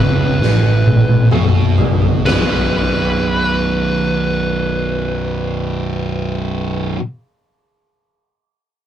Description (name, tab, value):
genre	stoner and doom metal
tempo	62-69 BPM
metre	4/4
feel	straight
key	unclear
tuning	A4 = 439 Hz
part	fuzz lead guitar	melody	0.0-6.9 s	B4	-21 LUFS	equal	distortion
part	fuzz guitar	riff	0.0-7.0 s	B1 to B2	-18 LUFS	right 2 dB	distortion
part	fuzz picked electric bass	bass	0.0-6.9 s	B0 to B1	-25 LUFS	equal	overdrive
part	oversized low-tuned drum kit	drums	0.4-2.5 s	crash cymbal, snare drum, toms	-15 LUFS	left 1 dB	none
room	moderate booth ambience, RT60 0.2 s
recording	rough rehearsal-room recording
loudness	-14 LUFS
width	side -10 dB against mid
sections	0.0-2.3 A section; 2.3-6.1 B section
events	slowing down 0.0-2.3; drum fill 0.4-2.3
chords	0.0 N.C.; 2.3 B5